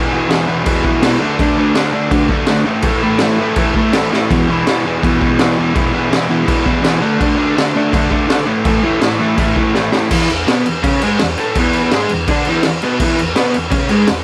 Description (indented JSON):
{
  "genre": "garage rock duo or trio",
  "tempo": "165 BPM",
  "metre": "4/4",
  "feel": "straight",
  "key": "E mixolydian",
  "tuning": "A4 = 439 Hz",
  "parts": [
    { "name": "overdriven electric guitar", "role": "riff", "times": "0.0-14.2 s", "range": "E2 to D4", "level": "-17 LUFS", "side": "equal", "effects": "none" },
    { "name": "raw garage drum kit", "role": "drums", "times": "0.3-14.2 s", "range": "crash cymbal, kick drum, snare drum", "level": "-19 LUFS", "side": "equal", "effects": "none" }
  ],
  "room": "light reverb",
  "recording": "none",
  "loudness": "-15 LUFS",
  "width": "mono",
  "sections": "0.0-10.1 A section; 10.1-14.2 B section",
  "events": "drum fill 4.1, 9.8-10.1",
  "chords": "0.0 E5; 1.2 D5; 2.7 A5; 4.3 E5; 7.0 D5; 8.5 A5; 10.1 E"
}